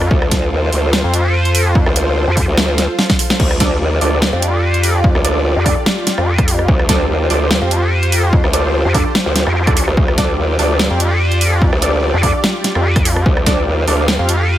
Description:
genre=heavy wobble dubstep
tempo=146 BPM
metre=4/4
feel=swing 54% on 16ths, half-time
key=D phrygian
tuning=A4 = 440 Hz
part: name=supersaw pad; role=sustained chords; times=0.0-14.6 s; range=F4 to F5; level=-22 LUFS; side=equal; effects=sidechain pumping
part: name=vowel-sweep wobble bass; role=bass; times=0.0-14.6 s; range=F2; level=-14 LUFS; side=equal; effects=chorus, overdrive
part: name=dubstep drum kit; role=drums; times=0.0-14.4 s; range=crash cymbal, hi-hat, rim click, snare drum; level=-18 LUFS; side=equal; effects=none
part: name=growl bass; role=bass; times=0.1-14.2 s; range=D2 to Eb2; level=-16 LUFS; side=equal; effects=chorus, overdrive
part: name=electronic kick drum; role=drums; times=0.1-13.6 s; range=none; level=-16 LUFS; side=equal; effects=overdrive
part: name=orchestra-hit-like synth stab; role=stabs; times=3.6-14.1 s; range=D4 to D5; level=-22 LUFS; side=right 2 dB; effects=built-in reverb, tape echo
room=digital ambience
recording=none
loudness=-12 LUFS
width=side -12 dB against mid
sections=0.0-14.6 A section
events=drum fill 2.8-3.4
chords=0.0 Dm

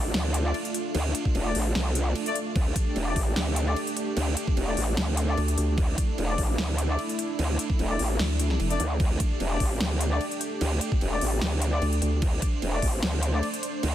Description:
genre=heavy wobble dubstep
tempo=149 BPM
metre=4/4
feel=swing 53% on 16ths, half-time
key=D minor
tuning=A4 = 441 Hz
part: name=supersaw pad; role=sustained chords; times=0.0-13.9 s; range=A3 to C5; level=-32 LUFS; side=right 1 dB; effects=vintage 12-bit sampler grit, sidechain pumping, low-pass filter
part: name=growl bass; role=bass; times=0.0-13.9 s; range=E1 to D2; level=-26 LUFS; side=equal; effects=chorus, overdrive
part: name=big-room dance drum kit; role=drums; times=0.1-13.9 s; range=crash cymbal, hi-hat, snare drum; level=-32 LUFS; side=right 1 dB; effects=overdrive, studio reverb
part: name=warm brass ensemble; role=stabs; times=0.4-13.5 s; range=A3 to D5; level=-35 LUFS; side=left 4 dB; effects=tape echo
part: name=electronic kick drum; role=drums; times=1.3-12.9 s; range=none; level=-26 LUFS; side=equal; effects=overdrive, studio reverb
part: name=vowel-sweep wobble bass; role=bass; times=5.4-5.8, 8.2-8.8, 11.8-12.2 s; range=F1 to D2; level=-24 LUFS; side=equal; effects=chorus, overdrive
room=little or no reverb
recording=dense, heavily limited modern master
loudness=-24 LUFS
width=side -12 dB against mid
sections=0.0-13.9 A section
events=break 2.2-2.6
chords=0.0 D5

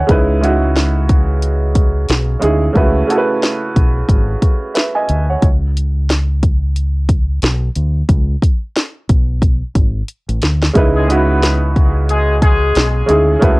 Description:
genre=hip hop, boom-bap hip-hop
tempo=90 BPM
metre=4/4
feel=swing 59% on 16ths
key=C# minor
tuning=A4 = 442 Hz
part: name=clear upright piano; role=accompaniment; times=0.0-5.4, 10.7-13.6 s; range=C#3 to G#5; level=-16 LUFS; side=right 2 dB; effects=cassette tape, high-pass filter, low-pass filter
part: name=deep dub fingered electric bass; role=bass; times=0.1-13.6 s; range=G#1 to D2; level=-15 LUFS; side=equal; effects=transformer saturation
part: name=house drum kit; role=drums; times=0.1-13.6 s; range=hi-hat, kick drum, snare drum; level=-14 LUFS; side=equal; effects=overdrive, cassette tape
part: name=dark trumpet section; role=stabs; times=10.9-12.9 s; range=G#3 to B4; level=-19 LUFS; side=left 2 dB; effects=high-pass filter, low-pass filter, tape echo
room=little or no reverb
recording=home recording on cassette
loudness=-12 LUFS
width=side -23 dB against mid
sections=0.0-10.8 A section; 10.8-13.6 B section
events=drum fill 10.1-10.8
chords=0.1 C#m7; 2.8 B7sus4; 5.4 N.C.; 8.1 G#dim; 10.8 C#m7

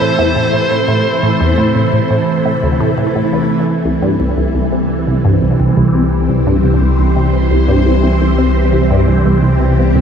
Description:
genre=ambient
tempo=86 BPM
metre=4/4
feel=straight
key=unclear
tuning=A4 = 440 Hz
part: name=smooth overdriven lead guitar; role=melody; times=0.0-2.9 s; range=C5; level=-19 LUFS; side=right 1 dB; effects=tape echo
part: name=phased string machine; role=sustained chords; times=0.0-10.0 s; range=C3 to C5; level=-15 LUFS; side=equal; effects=ensemble chorus, phaser
part: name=resonant blip pluck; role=riff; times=0.0-10.0 s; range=C2 to C3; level=-15 LUFS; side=equal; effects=phaser, tape echo
part: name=bubbling stepped-filter texture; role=texture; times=0.0-10.0 s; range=G4 to B5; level=-29 LUFS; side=right 1 dB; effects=chorus, built-in reverb
part: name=warm sub bass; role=bass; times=3.7-10.0 s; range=C2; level=-16 LUFS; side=equal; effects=tube saturation
part: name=soft round pluck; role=arpeggios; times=3.9-9.9 s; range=B3 to B4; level=-31 LUFS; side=moving between left 7 dB and right 2 dB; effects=none
room=wet huge ambient reverb, RT60 7.2 s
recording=none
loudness=-11 LUFS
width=side -7 dB against mid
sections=0.0-3.7 A section; 3.7-10.0 B section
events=none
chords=0.0 Am; 3.7 C

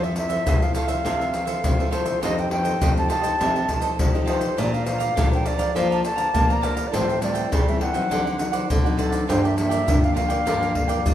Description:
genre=samba and choro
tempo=102 BPM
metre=4/4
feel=straight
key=F major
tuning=A4 = 440 Hz
part: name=concert flute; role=melody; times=0.0-11.1 s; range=A4 to Bb5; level=-25 LUFS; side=equal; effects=none
part: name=cavaquinho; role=accompaniment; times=0.0-11.1 s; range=D4 to Bb5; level=-30 LUFS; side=right 6 dB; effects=none
part: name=nylon-string guitar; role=accompaniment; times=0.0-11.1 s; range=G2 to C5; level=-30 LUFS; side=left 3 dB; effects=none
part: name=nylon-string guitar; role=bass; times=0.0-11.1 s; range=F2 to Bb3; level=-27 LUFS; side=equal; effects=none
part: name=maracas, pandeiro and surdo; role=percussion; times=0.0-11.1 s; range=none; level=-24 LUFS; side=left 1 dB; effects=none
room=wet recital hall reverb, RT60 1.7 s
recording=minimal, uncompressed stereo recording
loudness=-19 LUFS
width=side -11 dB against mid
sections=0.0-11.1 A section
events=none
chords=0.0 Fmaj7; 2.2 F9; 4.6 Bbmaj9; 6.9 Am7; 8.1 D7b9; 9.3 Gm7

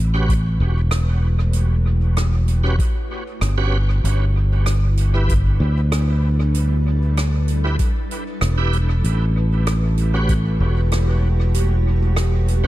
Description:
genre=ambient dub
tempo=96 BPM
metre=4/4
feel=straight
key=A mixolydian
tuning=A4 = 440 Hz
part: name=granular cloud pad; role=sustained chords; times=0.0-12.7 s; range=G3 to C#5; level=-31 LUFS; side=equal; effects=built-in reverb
part: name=fingered electric bass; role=bass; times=0.0-12.7 s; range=E1 to D2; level=-16 LUFS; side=equal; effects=none
part: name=bright tonewheel organ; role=stabs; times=0.1-12.7 s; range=C#4 to B4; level=-30 LUFS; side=right 3 dB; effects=overdrive, chorus vibrato, slow rotary speaker, dub echo
part: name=electronic kick drum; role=drums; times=0.3-10.4 s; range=none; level=-21 LUFS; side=equal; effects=overdrive
part: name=soft-mallet drum kit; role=drums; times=0.3-12.6 s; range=hi-hat, rim click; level=-30 LUFS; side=right 2 dB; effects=dub echo
room=small room ambience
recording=none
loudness=-16 LUFS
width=side -16 dB against mid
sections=0.0-12.7 A section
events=fade-in on ambient pad 0.0-12.7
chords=0.0 A13; 4.0 G6; 9.0 A13

